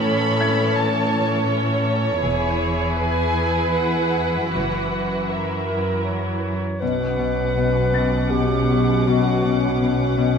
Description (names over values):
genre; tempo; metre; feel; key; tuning
cinematic, suspense film score; 80 BPM; 3/4; straight; B minor from 6.8 s; A4 = 445 Hz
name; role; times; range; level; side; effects
muted studio violin section; melody; 0.0-10.4 s; E5 to D6; -30 LUFS; equal; none
muted studio violin section; second line; 0.0-10.4 s; F#4 to F#5; -25 LUFS; right 2 dB; none
muted studio viola section; accompaniment; 0.0-10.4 s; E3 to E4; -27 LUFS; left 1 dB; none
muted studio cello section; bass; 0.0-10.4 s; E2 to B2; -24 LUFS; equal; none
clear grand piano; texture; 0.4-4.5, 7.9-10.4 s; E5 to A6; -33 LUFS; left 3 dB; none
muted studio double bass section; bass; 2.2-10.4 s; E1 to B1; -25 LUFS; right 1 dB; none
warm clarinet; second line; 5.7-9.8 s; F#4 to C#5; -25 LUFS; right 1 dB; none
warm French horn section; sustained chords; 6.8-10.4 s; C#4 to F#4; -27 LUFS; left 4 dB; none
Celtic harp; riff; 6.8-10.4 s; B2; -23 LUFS; left 10 dB; none
room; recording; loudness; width
wet stone room reverb, RT60 1.3 s; none; -18 LUFS; side -6 dB against mid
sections
0.0-6.8 A section; 6.8-10.4 B section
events
none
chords
0.0 A; 2.2 E; 4.5 F#7; 6.8 Bmadd9